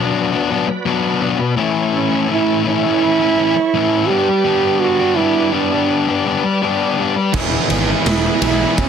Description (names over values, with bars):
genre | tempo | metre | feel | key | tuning
quiet-loud alternative rock | 83 BPM | 4/4 | straight | unclear | A4 = 436 Hz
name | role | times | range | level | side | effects
warm French horn | melody | 0.0-8.9 s | C#4 to G4 | -17 LUFS | right 6 dB | digital delay
bright tonewheel organ | sustained chords | 0.0-8.9 s | F#4 to E6 | -27 LUFS | right 5 dB | overdrive, chorus vibrato, slow rotary speaker
fuzz guitar | riff | 0.0-8.9 s | A2 to G#4 | -17 LUFS | left 6 dB | distortion
crunchy overdriven guitar | riff | 7.3-8.9 s | E2 to E3 | -27 LUFS | right 6 dB | none
fuzz guitar | riff | 7.3-8.9 s | E3 to G#4 | -24 LUFS | right 17 dB | distortion
fuzz picked electric bass | bass | 7.3-8.9 s | E1 to B1 | -21 LUFS | right 1 dB | overdrive
raw garage drum kit | drums | 7.3-8.9 s | crash cymbal, kick drum, ride cymbal, snare drum | -18 LUFS | right 2 dB | none
room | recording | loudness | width
light reverb | dense, heavily limited modern master | -14 LUFS | side -7 dB against mid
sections
0.0-8.9 A section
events
none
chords
0.0 Bm; 1.6 A; 4.1 G; 7.3 E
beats
0.15 0.87 | 1.58 2.30 3.02 3.74 | 4.46 5.18 5.90 6.62 | 7.34 8.06 8.78